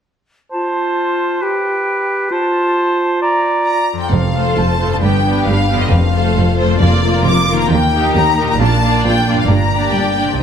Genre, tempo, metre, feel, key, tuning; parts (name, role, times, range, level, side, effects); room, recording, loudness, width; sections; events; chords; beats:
cinematic; 134 BPM; 4/4; straight; F mixolydian; A4 = 440 Hz
clear clarinet; second line; 0.5-3.9 s; F4 to G4; -19 LUFS; equal
clear oboe; second line; 0.5-3.9 s; B4 to D5; -20 LUFS; right 2 dB
silver concert flute; second line; 0.5-3.9 s; G5 to Bb5; -20 LUFS; right 2 dB
clear symphonic violin section; melody; 3.7-10.4 s; C5 to D6; -18 LUFS; left 3 dB
concert harp; arpeggios; 3.9-10.4 s; F2 to Eb5; -21 LUFS; left 8 dB
rich symphonic cello section; bass; 4.1-10.3 s; Eb2 to Bb2; -19 LUFS; right 2 dB
rich symphonic double bass section; bass; 4.1-10.4 s; F1 to Eb2; -19 LUFS; right 3 dB
timpani; percussion; 4.1-7.4, 10.4 s; F2 to C3; -20 LUFS; left 2 dB
warm symphonic violin section; second line; 4.3-10.4 s; F4 to D5; -21 LUFS; left 2 dB
warm symphonic viola section; accompaniment; 4.3-10.4 s; A3 to F4; -20 LUFS; right 2 dB
moderate scoring stage reverb, RT60 1.9 s; -12 LUFS; side -8 dB against mid
0.5-4.1 A section; 4.1-10.4 B section
0.5 F; 1.4 G; 2.3 F; 3.2 Bb/F; 4.1 F; 5.0 G; 5.9 F; 6.8 Bb/F; 7.7 Eb; 8.6 Bb; 9.5 Gm
| 0.52 0.97 1.42 1.87 | 2.32 2.76 3.21 3.66 | 4.12 4.57 5.02 5.47 | 5.92 6.37 6.82 7.26 | 7.71 8.16 8.60 9.05 | 9.50 9.95 10.41